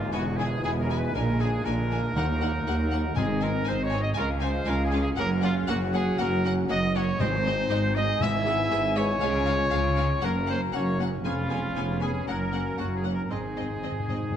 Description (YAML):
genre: cinematic, heroic adventure film score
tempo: 119 BPM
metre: 4/4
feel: straight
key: unclear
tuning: A4 = 439 Hz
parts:
  - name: clear oboe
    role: second line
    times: 0.0-14.4 s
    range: F4 to E5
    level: -38 LUFS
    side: equal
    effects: none
  - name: flute section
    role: second line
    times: 0.0-14.4 s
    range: Eb5 to C6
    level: -37 LUFS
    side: left 6 dB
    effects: none
  - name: warm clarinet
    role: second line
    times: 0.0-14.4 s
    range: Bb3 to F4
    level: -38 LUFS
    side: left 2 dB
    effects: none
  - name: dark trombone section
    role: sustained chords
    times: 0.0-14.4 s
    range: F2 to C4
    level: -38 LUFS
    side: right 3 dB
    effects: none
  - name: mellow French horn section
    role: sustained chords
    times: 0.0-14.4 s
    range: Bb3 to Ab4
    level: -36 LUFS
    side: left 4 dB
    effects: none
  - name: clear trumpet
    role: stabs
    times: 0.0-14.4 s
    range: F4 to E5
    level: -31 LUFS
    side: right 1 dB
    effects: none
  - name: warm chamber double bass section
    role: bass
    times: 0.0-14.3 s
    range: E1 to Eb2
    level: -30 LUFS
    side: right 2 dB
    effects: none
  - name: warm symphonic cello section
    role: bass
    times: 0.0-14.3 s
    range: Db2 to Db3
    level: -32 LUFS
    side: right 1 dB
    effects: none
  - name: warm symphonic violin section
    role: melody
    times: 0.1-14.2 s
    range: Eb5 to G#5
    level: -38 LUFS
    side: left 4 dB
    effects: none
  - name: rich symphonic violin section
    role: second line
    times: 0.1-14.2 s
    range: B3 to F4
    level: -40 LUFS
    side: left 3 dB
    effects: none
  - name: rich symphonic viola section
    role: accompaniment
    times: 0.1-14.2 s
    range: Ab3 to Db4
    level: -37 LUFS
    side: equal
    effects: none
  - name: timpani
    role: percussion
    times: 2.2-3.9, 7.2-8.9, 13.3-14.4 s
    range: Ab2 to Eb3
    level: -34 LUFS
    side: left 2 dB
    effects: none
room: moderate scoring stage reverb, RT60 1.6 s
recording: none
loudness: -24 LUFS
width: side -9 dB against mid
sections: 0.0-14.4 A section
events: timpani fill 13.3-14.4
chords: 0.1 E; 1.2 Bb7; 2.2 Ebm; 3.2 Ab; 4.2 Db; 5.2 Gb; 7.2 Ab; 8.2 E/G#; 9.2 Db; 10.2 Gb; 11.3 Db7/F; 12.3 Gb; 13.3 Ab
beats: 0.14 0.65 | 1.15 1.66 2.16 2.67 | 3.17 3.68 4.18 4.68 | 5.19 5.69 6.20 6.70 | 7.21 7.71 8.21 8.72 | 9.23 9.73 10.24 10.75 | 11.25 11.76 12.27 12.79 | 13.30 13.83 14.35